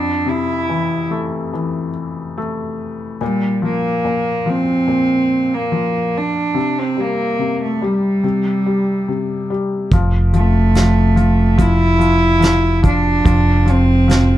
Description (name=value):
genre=acoustic folk-pop ballad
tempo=72 BPM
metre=4/4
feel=straight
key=F major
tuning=A4 = 441 Hz
part: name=rich cello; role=melody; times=0.0-14.4 s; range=G3 to E4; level=-17 LUFS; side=right 2 dB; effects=plate reverb
part: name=felt-muted upright piano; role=accompaniment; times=0.0-14.4 s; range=F2 to A3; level=-20 LUFS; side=left 3 dB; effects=none
part: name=fingered electric bass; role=bass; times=9.9-14.4 s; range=F1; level=-15 LUFS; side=equal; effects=none
part: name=soft brush drum kit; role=drums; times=9.9-14.3 s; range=hi-hat, kick drum, snare drum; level=-19 LUFS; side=right 1 dB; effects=none
room=light reverb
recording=dark, warm production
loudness=-14 LUFS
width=side -13 dB against mid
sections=0.0-9.9 A section; 9.9-14.4 B section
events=none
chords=0.0 Fmaj7; 3.2 Bb5; 6.6 C5; 9.9 F